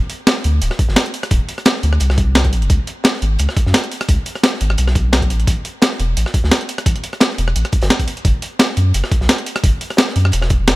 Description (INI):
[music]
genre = liquid drum and bass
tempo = 173 BPM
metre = 4/4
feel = swing 54% on 16ths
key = unclear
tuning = A4 = 442 Hz
[part]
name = breakbeat sampler-style drum kit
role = drums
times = 0.1-10.8 s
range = hi-hat, rim click, snare drum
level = -17 LUFS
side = equal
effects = none
[part]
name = crunchy breakbeat drum kit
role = drums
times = 0.1-10.8 s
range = hi-hat, snare drum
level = -26 LUFS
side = equal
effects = high-pass filter on hats, high-pass filter on snare, high-pass filter on room
[part]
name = warm sub bass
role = bass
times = 0.4-10.8 s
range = D1 to F#2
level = -16 LUFS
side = equal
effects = none
[part]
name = electronic kick drum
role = drums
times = 0.8-10.6 s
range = none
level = -17 LUFS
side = equal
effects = none
[sound]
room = studio reverb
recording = none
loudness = -14 LUFS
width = side -19 dB against mid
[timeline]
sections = 0.0-10.8 A section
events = none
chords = none